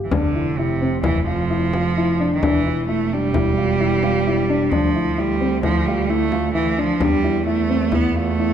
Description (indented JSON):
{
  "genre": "contemporary instrumental, chamber music in an uneven meter",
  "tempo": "131 BPM",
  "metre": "5/4",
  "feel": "straight",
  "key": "unclear",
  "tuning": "A4 = 440 Hz",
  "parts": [
    { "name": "clear cello", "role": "second line", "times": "0.0-8.5 s", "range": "C3 to B3", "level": "-21 LUFS", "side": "right 5 dB", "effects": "none" },
    { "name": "dark grand piano", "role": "arpeggios", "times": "0.0-8.5 s", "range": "C4 to F4", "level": "-22 LUFS", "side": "left 4 dB", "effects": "none" },
    { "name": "clear double bass", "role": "bass", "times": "0.0-8.5 s", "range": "E1 to E2", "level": "-24 LUFS", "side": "right 2 dB", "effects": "none" },
    { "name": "frame drum", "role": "percussion", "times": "0.1-8.3 s", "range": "none", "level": "-25 LUFS", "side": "left 3 dB", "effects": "none" }
  ],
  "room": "moderate scoring stage reverb, RT60 1.8 s",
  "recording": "dark, warm production",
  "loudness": "-17 LUFS",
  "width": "side -9 dB against mid",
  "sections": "0.1-8.5 A section",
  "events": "none",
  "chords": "0.1 F5; 2.4 Em7; 4.7 Dmadd9; 7.0 A7(no3)/E"
}